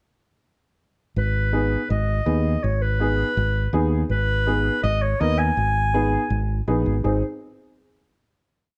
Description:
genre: latin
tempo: 163 BPM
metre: 4/4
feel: straight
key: G# minor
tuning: A4 = 440 Hz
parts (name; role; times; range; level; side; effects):
- mellow clarinet; melody; 1.2-6.7 s; B4 to G#5; -27 LUFS; equal; none
- fingered electric bass; bass; 1.2-7.2 s; G#1 to D#2; -24 LUFS; equal; none
- warm upright piano; accompaniment; 1.5-7.2 s; B3 to A#4; -27 LUFS; equal; none
room: light reverb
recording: none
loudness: -22 LUFS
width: mono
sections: 1.2-7.0 A section; 7.0-8.5 final chord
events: none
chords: 1.2 G#m; 7.0 G#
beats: | 1.16 1.53 1.90 2.27 | 2.63 3.00 3.37 3.74 | 4.10 4.47 4.84 5.21 | 5.57 5.94 6.31 6.67 | 7.04

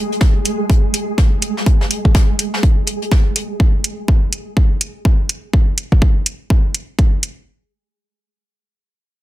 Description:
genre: minimal techno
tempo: 124 BPM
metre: 4/4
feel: swing 60% on 16ths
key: unclear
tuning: A4 = 440 Hz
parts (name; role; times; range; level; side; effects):
- flickering grainy texture; texture; 0.0-3.6 s; Ab3 to Ab4; -24 LUFS; right 2 dB; built-in reverb, sidechain pumping
- jazz brush drum kit; drums; 0.1-3.5 s; hi-hat, snare drum; -26 LUFS; left 2 dB; sidechain pumping on hats, high-pass filter on hats, soft clipping on snare, high-pass filter on snare, high-pass filter on room
- electronic kick drum; drums; 0.2-7.1 s; none; -13 LUFS; equal; none
- electronic hi-hat; drums; 0.5-7.3 s; none; -18 LUFS; right 1 dB; none
room: little or no reverb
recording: dense, heavily limited modern master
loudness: -14 LUFS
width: side -15 dB against mid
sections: 0.0-7.5 A section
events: none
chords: none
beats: 0.21 0.70 1.18 | 1.66 2.15 2.63 3.12 | 3.60 4.08 4.57 5.05 | 5.54 6.02 6.50 6.99

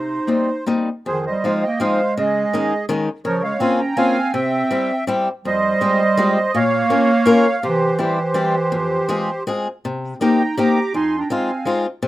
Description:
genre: musette waltz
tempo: 164 BPM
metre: 3/4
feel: rubato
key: F minor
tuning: A4 = 440 Hz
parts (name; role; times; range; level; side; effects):
- accordion; melody; 0.0-11.8 s; G4 to D6; -20 LUFS; right 1 dB; light tremolo tuning
- clear clarinet; second line; 0.0-11.8 s; Eb3 to G4; -21 LUFS; right 3 dB; none
- picked swing-style acoustic guitar; accompaniment; 0.0-12.1 s; F2 to Bb4; -20 LUFS; left 2 dB; none
room: light reverb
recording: rough home demo mix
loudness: -16 LUFS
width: side -15 dB against mid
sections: 0.0-1.1 A section; 1.1-9.8 B section; 9.8-12.1 A section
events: none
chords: 0.0 Cm7; 1.1 Fm7; 2.2 Dbsus2; 3.2 Bbmadd9/Db; 4.3 C; 5.5 Fmadd9; 6.5 Bbm; 7.6 C; 8.7 Fm; 9.8 Cm7; 10.9 Fm7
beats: 0.28 0.68 | 1.06 1.44 1.80 | 2.17 2.53 2.89 | 3.25 3.61 3.97 | 4.34 4.71 5.08 | 5.46 5.82 6.19 | 6.55 6.91 7.27 | 7.63 7.99 8.36 | 8.72 9.09 9.47 | 9.84 10.22 10.59 | 10.95 11.31 11.67 | 12.03

